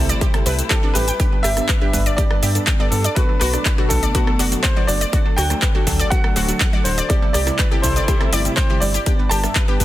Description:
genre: progressive house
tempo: 122 BPM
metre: 4/4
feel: straight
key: G major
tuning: A4 = 444 Hz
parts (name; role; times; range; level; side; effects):
- bright grand piano; melody; 0.0-9.8 s; A4 to A5; -25 LUFS; equal; vintage 12-bit sampler grit, digital delay
- dark symphonic string section; sustained chords; 0.0-9.8 s; C3 to A4; -30 LUFS; left 2 dB; sidechain pumping
- wide unison pluck; stabs; 0.0-9.8 s; G2 to E5; -26 LUFS; right 2 dB; sidechain pumping, digital delay
- round analog bass; bass; 0.0-9.8 s; D1 to G2; -21 LUFS; equal; sidechain pumping
- analog pluck; arpeggios; 0.1-9.8 s; D4 to G5; -27 LUFS; left 2 dB; chorus, sidechain pumping, digital delay
- big-room dance drum kit; drums; 0.1-9.8 s; handclaps, hi-hat, rim click, shaker; -23 LUFS; equal; sidechain pumping on hats, sidechain pumping on perc
- electronic kick drum; drums; 0.2-9.8 s; none; -18 LUFS; equal; none
room: little or no reverb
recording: dense, heavily limited modern master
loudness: -15 LUFS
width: side -14 dB against mid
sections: 0.0-9.8 A section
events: none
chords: 0.0 C6; 1.2 G; 3.2 Bm7; 5.1 D; 7.1 C6; 9.1 G

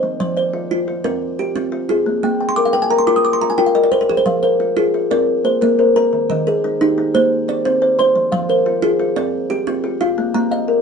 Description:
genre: southern african traditional, mbira-style interlocking cycle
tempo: 118 BPM (dotted quarters)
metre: 12/8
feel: straight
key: F dorian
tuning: A4 = 439 Hz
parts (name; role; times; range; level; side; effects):
- kalimba; arpeggios; 0.0-10.8 s; Eb3 to C6; -17 LUFS; left 3 dB; none
- kalimba; arpeggios; 0.0-10.8 s; Eb3 to Eb6; -18 LUFS; right 3 dB; none
room: wet studio reverb, RT60 0.5 s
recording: band playing live in one room, nothing above 10.3 kHz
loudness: -14 LUFS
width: side -6 dB against mid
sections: 0.0-4.1 A section; 4.1-10.8 B section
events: kalimba fill 2.3-4.1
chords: 0.0 F5; 2.1 Bb5; 4.1 Fm; 5.1 Bb; 6.1 Eb; 7.1 C5; 8.2 Fm; 10.2 Bb5

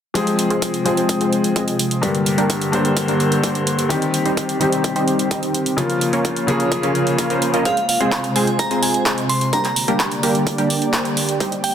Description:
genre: EDM, festival progressive house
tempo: 128 BPM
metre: 4/4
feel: straight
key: F minor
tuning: A4 = 441 Hz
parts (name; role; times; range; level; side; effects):
- felt-muted upright piano; accompaniment; 0.1-7.7 s; G2 to C5; -20 LUFS; left 3 dB; sidechain pumping, digital delay
- lush unison pad; sustained chords; 0.6-11.7 s; C3 to D5; -24 LUFS; right 1 dB; chorus, sidechain pumping
- supersaw stab; riff; 0.2-11.5 s; G3 to F5; -22 LUFS; right 1 dB; sidechain pumping, low-pass filter, digital delay
- big-room dance drum kit; drums; 0.2-11.7 s; handclaps, hi-hat; -24 LUFS; right 2 dB; none
- electronic kick drum; drums; 0.2-11.5 s; none; -27 LUFS; equal; high-pass filter on kick, high-pass filter on room
- glassy synth bell; melody; 7.7-11.7 s; F5 to C6; -22 LUFS; right 1 dB; chorus, digital delay
- riser; sound effects; 11.6-11.7 s; none; -37 LUFS; equal; none
room: moderate lush hall reverb, RT60 2.2 s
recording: dense, heavily limited modern master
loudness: -16 LUFS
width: side -9 dB against mid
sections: 0.2-11.7 A section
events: filter sweep on analog synth pad 0.2-11.7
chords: 0.2 Fm; 2.0 Gm; 3.9 Cm; 5.8 Bbm; 7.7 Fm; 9.5 Gm

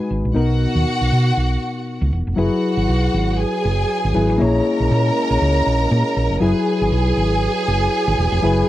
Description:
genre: disco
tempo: 119 BPM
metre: 4/4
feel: swing 56% on 16ths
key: unclear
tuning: A4 = 441 Hz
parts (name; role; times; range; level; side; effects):
- warm studio string section; second line; 0.0-8.7 s; F#4 to A#5; -22 LUFS; right 1 dB; none
- reed electric piano; accompaniment; 0.0-8.7 s; B2 to C#5; -21 LUFS; left 3 dB; spring reverb
- hollow-body short-scale fingered electric bass; bass; 0.1-8.6 s; E1 to B2; -18 LUFS; right 1 dB; none
- dark French horn section; sustained chords; 2.4-8.7 s; F#3 to B4; -25 LUFS; right 1 dB; none
room: little or no reverb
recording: dry, close 1970s-style studio recording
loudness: -16 LUFS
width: side -14 dB against mid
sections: 0.0-2.4 A section; 2.4-8.7 B section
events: none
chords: 0.4 Bmaj7; 2.4 F#9sus4; 4.4 A#m7b5; 6.4 F#9sus4

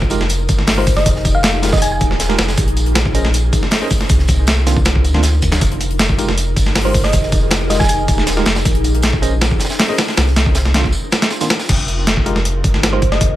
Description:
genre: drum and bass, jungle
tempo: 158 BPM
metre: 4/4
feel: straight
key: F minor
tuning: A4 = 440 Hz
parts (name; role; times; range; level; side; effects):
- ethereal airy pad; sustained chords; 0.0-13.4 s; Db4 to C5; -26 LUFS; left 1 dB; ensemble chorus, built-in reverb, tremolo
- saturated sub bass; bass; 0.0-13.4 s; Eb1 to D2; -17 LUFS; equal; none
- breakbeat sampler-style drum kit; drums; 0.0-13.3 s; crash cymbal, hi-hat, kick drum, snare drum; -15 LUFS; equal; overdrive
- bell-like tine electric piano; stabs; 0.1-13.0 s; Eb3 to Eb5; -23 LUFS; right 2 dB; medium stereo tremolo, vintage 12-bit sampler grit, dub echo
- deep reggae drum kit; drums; 0.1-11.7 s; hi-hat, snare drum, tambourine; -26 LUFS; right 1 dB; high-pass filter on hats, high-pass filter on snare, high-pass filter on perc, high-pass filter on room
- thumb-piano-like synth pluck; melody; 0.8-2.0, 6.8-8.0, 12.9-13.3 s; C5 to Ab5; -21 LUFS; equal; chorus, cassette tape, dub echo
room: small room ambience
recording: none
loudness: -12 LUFS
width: side -14 dB against mid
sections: 0.0-11.7 A section; 11.7-13.4 A section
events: drop 0.0-11.7, 11.7-13.4; break 10.9-11.7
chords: 0.0 Fm11; 2.6 Bbm11; 4.1 Cm11; 5.6 Fm11; 8.7 Bbm11; 10.2 Cm11; 11.7 Fm11

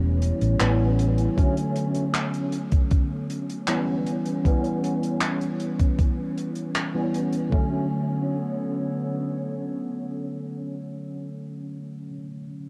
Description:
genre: vaporwave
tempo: 78 BPM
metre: 4/4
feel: straight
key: B minor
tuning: A4 = 440 Hz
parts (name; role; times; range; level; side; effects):
- tine electric piano; accompaniment; 0.0-12.7 s; D3 to C#4; -29 LUFS; equal; ensemble chorus, vintage 12-bit sampler grit, tape echo
- warbly tape-like pad; sustained chords; 0.0-11.4 s; D3 to C#5; -39 LUFS; equal; chorus, built-in reverb
- hollow-body short-scale fingered electric bass; bass; 0.0-1.3 s; E1 to A1; -24 LUFS; equal; none
- compact cocktail drum kit; drums; 0.2-7.5 s; handclaps, hi-hat; -33 LUFS; equal; none
- electronic kick drum; drums; 1.4-7.7 s; none; -23 LUFS; equal; none
room: little or no reverb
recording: dark, warm production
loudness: -25 LUFS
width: mono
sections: 0.0-7.5 A section; 7.5-10.6 B section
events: none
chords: 0.0 A7; 1.4 Bm9; 4.1 A7; 7.5 Bm9

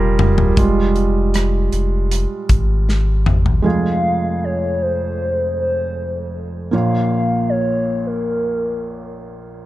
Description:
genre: pop ballad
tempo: 78 BPM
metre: 4/4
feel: straight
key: F minor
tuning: A4 = 440 Hz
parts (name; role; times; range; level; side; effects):
- hollow clarinet-like synth lead; melody; 0.0-9.4 s; Bb4 to F5; -22 LUFS; left 1 dB; chorus, tape echo
- felt-muted upright piano; accompaniment; 0.0-9.7 s; F1 to Db5; -20 LUFS; right 2 dB; none
- warm sub bass; bass; 0.0-3.6 s; Eb1 to Ab1; -17 LUFS; equal; none
- modern studio drum kit; drums; 0.2-3.6 s; hi-hat, kick drum, rim click, snare drum, toms; -17 LUFS; left 1 dB; none
room: light reverb, small room ambience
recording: dark, warm production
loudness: -16 LUFS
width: side -15 dB against mid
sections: 0.6-3.6 A section; 3.6-9.7 B section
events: drum fill 0.0-0.6, 2.9-3.6; felt piano solo 0.6-3.6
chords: 0.0 Fmadd9; 3.6 Fm; 6.7 Bbm

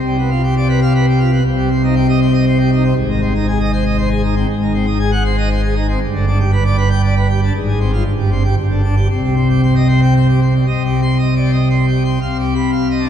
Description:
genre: classical, organ toccata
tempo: 118 BPM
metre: 3/4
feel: straight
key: C minor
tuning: A4 = 437 Hz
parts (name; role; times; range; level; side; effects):
- pipe organ, plenum; solo; 0.0-13.1 s; G1 to C6; -12 LUFS; equal; none
room: wet church reverb, RT60 3.6 s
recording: heard from further back in the room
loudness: -12 LUFS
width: side -9 dB against mid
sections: 0.0-10.7 A section; 10.7-13.1 A section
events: none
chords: 0.0 G7/C; 1.4 Cm; 3.0 Ab; 4.5 Ab7; 6.0 G; 7.5 Fm/Ab; 8.0 C5/G; 8.6 G5; 9.1 Cm; 12.2 G7/C

